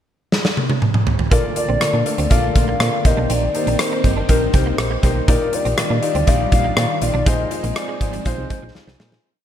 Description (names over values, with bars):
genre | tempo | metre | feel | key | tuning
1980s-style pop | 121 BPM | 4/4 | straight | Bb major | A4 = 440 Hz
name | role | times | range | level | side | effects
big rock drum kit | drums | 0.3-9.2 s | hi-hat, kick drum, rim click, snare drum, toms | -19 LUFS | equal | gated reverb
hollow clarinet-like synth lead | melody | 1.3-9.0 s | Bb4 to F5 | -24 LUFS | left 2 dB | chorus, ping-pong delay
warm grand piano | accompaniment | 1.3-9.3 s | Bb2 to D5 | -24 LUFS | left 4 dB | wide subtle chorus
phased string machine | sustained chords | 1.3-9.2 s | D3 to D4 | -27 LUFS | equal | ensemble chorus, phaser
direct-recorded clean electric guitar | riff | 1.3-9.1 s | F3 to Eb4 | -31 LUFS | right 7 dB | ensemble chorus
solid FM bass | bass | 1.3-9.2 s | G1 to Bb2 | -21 LUFS | right 1 dB | none
room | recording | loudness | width
light reverb, small room ambience | bright 1980s-style digital production | -16 LUFS | side -10 dB against mid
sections
0.0-1.3 pickup bar; 1.3-9.2 verse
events
drum fill 0.3-1.3, 8.8-9.2; fade-out 7.3-9.2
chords
0.0 N.C.; 1.3 Bbmaj7; 3.0 Cm7; 5.3 Ebmaj9/Bb; 7.3 Ab6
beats
0.32 0.82 | 1.31 1.81 2.31 2.80 | 3.30 3.79 4.29 4.79 | 5.28 5.78 6.27 6.77 | 7.26 7.76 8.26 8.75